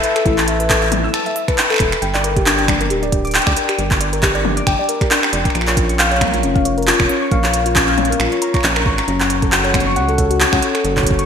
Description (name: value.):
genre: IDM.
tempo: 136 BPM.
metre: 4/4.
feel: swing 56% on 16ths.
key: unclear.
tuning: A4 = 440 Hz.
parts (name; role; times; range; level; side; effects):
harp-like synth pluck; arpeggios; 0.0-11.3 s; C#4 to E6; -18 LUFS; left 2 dB; chorus, ping-pong delay.
organic electronic drum kit; drums; 0.0-11.3 s; finger snaps, handclaps, hi-hat, toms; -17 LUFS; equal; overdrive, gated reverb, digital delay.
rubbery square bass; bass; 0.3-11.3 s; D1 to D2; -21 LUFS; right 1 dB; none.
electronic kick drum; drums; 0.3-11.2 s; none; -20 LUFS; right 1 dB; none.
room: wet lush hall reverb, RT60 1.8 s, digital ambience.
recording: bright 1980s-style digital production.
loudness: -13 LUFS.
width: side -7 dB against mid.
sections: 0.0-11.3 A section.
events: none.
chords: 0.0 Asus2; 2.0 Gm; 5.5 A#m; 9.1 F#m.